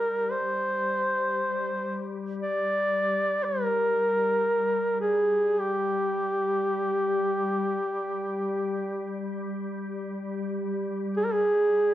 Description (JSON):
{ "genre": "caucasian folk, Caucasian lament", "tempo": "free time", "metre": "none", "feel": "none", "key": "G phrygian", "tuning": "A4 = 440 Hz", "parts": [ { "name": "mellow duduk", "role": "melody", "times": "0.0-11.9 s", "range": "G4 to D5", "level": "-24 LUFS", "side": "equal", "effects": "none" }, { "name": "soft additive organ-like pad", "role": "drone", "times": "0.0-11.9 s", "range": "G3", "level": "-33 LUFS", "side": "left 2 dB", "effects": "ensemble chorus, built-in reverb" } ], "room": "moderate recital hall reverb, RT60 1.3 s", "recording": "dark, warm production", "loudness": "-25 LUFS", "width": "side -13 dB against mid", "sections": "0.0-11.9 A section", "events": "none", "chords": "none" }